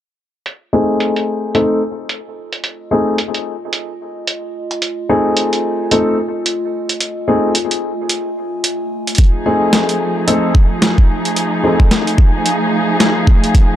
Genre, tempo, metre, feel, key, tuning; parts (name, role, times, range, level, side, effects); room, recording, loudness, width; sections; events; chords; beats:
glitch hop; 110 BPM; 4/4; swing 59% on 16ths; A4 = 440 Hz
boom bap sampler-style drum kit; drums; 0.5-13.7 s; hi-hat, snare drum; -16 LUFS; equal; overdrive, low-pass filter on hats, low-pass filter on snare, low-pass filter on room
warbly tape-like pad; texture; 0.5-13.8 s; A3 to G#5; -23 LUFS; equal; chorus, built-in reverb, sidechain pumping
dark grand piano; stabs; 0.7-11.9 s; A3 to A4; -16 LUFS; left 2 dB; sidechain pumping, low-pass filter, ping-pong delay
muted chamber string section; sustained chords; 9.2-13.8 s; F3 to G#4; -18 LUFS; right 1 dB; vintage 12-bit sampler grit, sidechain pumping
electronic kick drum; drums; 9.2-13.7 s; -10 LUFS; equal
little or no reverb; dark, warm production; -13 LUFS; side -11 dB against mid
0.5-13.8 A section
fade-in on ambient pad 0.5-13.8; filter sweep on drum 0.5-13.8; filter sweep on grand piano 0.5-13.8
0.5 F7#9
| 0.46 1.00 1.55 2.09 | 2.64 3.19 3.73 4.28 | 4.82 5.37 5.91 6.46 | 7.00 7.55 8.09 8.64 | 9.19 9.73 10.28 10.82 | 11.37 11.91 12.46 13.00 | 13.55